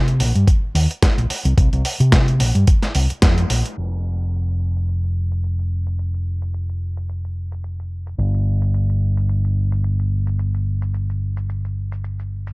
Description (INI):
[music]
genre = nu-disco, nu disco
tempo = 109 BPM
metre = 4/4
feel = swing 56% on 16ths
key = unclear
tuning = A4 = 439 Hz
[part]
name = fingered electric bass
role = bass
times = 0.0-12.5 s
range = F1 to C3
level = -18 LUFS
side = equal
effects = tube saturation
[part]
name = dusty soul sampler-style drum kit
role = drums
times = 0.1-12.5 s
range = crash cymbal, hi-hat, shaker, snare drum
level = -22 LUFS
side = equal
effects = overdrive
[part]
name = electronic kick drum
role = drums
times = 0.5-3.3 s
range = none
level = -15 LUFS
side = equal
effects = overdrive
[sound]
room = digital ambience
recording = dry, gritty hardware recording, low-pass filter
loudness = -17 LUFS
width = side -27 dB against mid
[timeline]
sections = 0.0-3.8 A section; 3.8-12.5 B section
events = band accent 3.2; filter sweep 3.8-12.5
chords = none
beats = 0.47 1.02 | 1.58 2.13 2.68 3.23 | 3.78 4.33 4.88 5.43 | 5.98 6.53 7.08 7.63 | 8.18 8.73 9.28 9.83 | 10.38 10.93 11.48 12.04